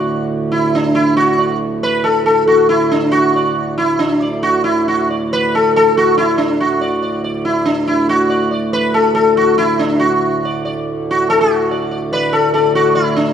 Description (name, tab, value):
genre	indian classical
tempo	140 BPM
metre	4/4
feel	straight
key	D raga bhupali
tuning	A4 = 440 Hz
part	sitar	melody	0.0-13.3 s	D4 to D5	-13 LUFS	left 1 dB	none
part	pedal harmonium	drone	0.0-13.3 s	D2 to A2	-20 LUFS	right 3 dB	none
room	wet recital hall reverb, RT60 1.6 s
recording	dark, warm production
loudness	-12 LUFS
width	side -8 dB against mid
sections	0.0-13.3 A section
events	speeding up 0.0-13.3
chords	none